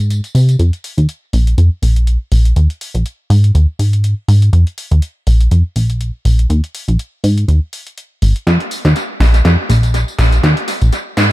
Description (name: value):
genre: filtered disco house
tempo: 122 BPM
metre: 4/4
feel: swing 56% on 16ths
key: unclear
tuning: A4 = 440 Hz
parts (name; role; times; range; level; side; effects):
- plucky analog bass; bass; 0.0-11.3 s; Ab1 to C3; -10 LUFS; equal; low-pass filter
- punchy analog drum machine; drums; 0.0-11.3 s; hi-hat, snare drum, tambourine; -21 LUFS; equal; high-pass filter on hats, high-pass filter on perc, high-pass filter on snare, analog delay
room: little or no reverb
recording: echo-heavy mix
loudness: -11 LUFS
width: side -18 dB against mid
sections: 0.6-11.3 A section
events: build-up 0.6-11.3; filter sweep on analog synth bass 0.6-11.3; drum fill 8.5-11.3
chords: none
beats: 0.11 | 0.60 1.09 1.58 2.08 | 2.57 3.06 3.55 4.04 | 4.53 5.03 5.52 6.01 | 6.50 6.99 7.48 7.98 | 8.47 8.96 9.45 9.94 | 10.44 10.93